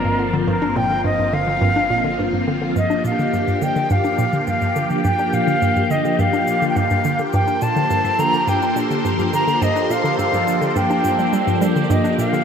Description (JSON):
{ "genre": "ambient, sequencer-driven space music", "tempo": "105 BPM", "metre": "4/4", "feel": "straight", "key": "G minor", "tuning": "A4 = 441 Hz", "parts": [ { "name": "silver concert flute", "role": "melody", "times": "0.0-12.4 s", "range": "Bb4 to Bb5", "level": "-21 LUFS", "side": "left 1 dB", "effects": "ping-pong delay" }, { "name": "phased string machine", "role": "sustained chords", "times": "0.0-12.4 s", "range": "F3 to C5", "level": "-21 LUFS", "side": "equal", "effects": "ensemble chorus, phaser" }, { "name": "hollow square pluck", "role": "riff", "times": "0.0-12.4 s", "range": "G2 to D4", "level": "-22 LUFS", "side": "equal", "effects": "chorus, ping-pong delay" }, { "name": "analog drone", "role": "bass", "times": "0.0-2.7 s", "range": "G1", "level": "-32 LUFS", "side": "equal", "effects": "chorus" }, { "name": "cabasa and claves", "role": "percussion", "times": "2.8-12.4 s", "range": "none", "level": "-42 LUFS", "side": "left 2 dB", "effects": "ping-pong delay" }, { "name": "bubbling stepped-filter texture", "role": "texture", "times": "3.6-12.4 s", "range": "G4 to G5", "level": "-27 LUFS", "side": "right 2 dB", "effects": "chorus, built-in reverb" } ], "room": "wet plate reverb, RT60 3.1 s", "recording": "none", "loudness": "-16 LUFS", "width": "side -7 dB against mid", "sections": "0.0-2.8 A section; 2.8-12.4 B section", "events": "fade-in on drum 2.8-12.4", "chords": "0.0 Gm7", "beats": "| 0.48 1.05 1.62 2.19 | 2.76 3.33 3.90 4.48 | 5.05 5.62 6.19 6.76 | 7.33 7.90 8.48 9.05 | 9.62 10.19 10.76 11.33 | 11.90" }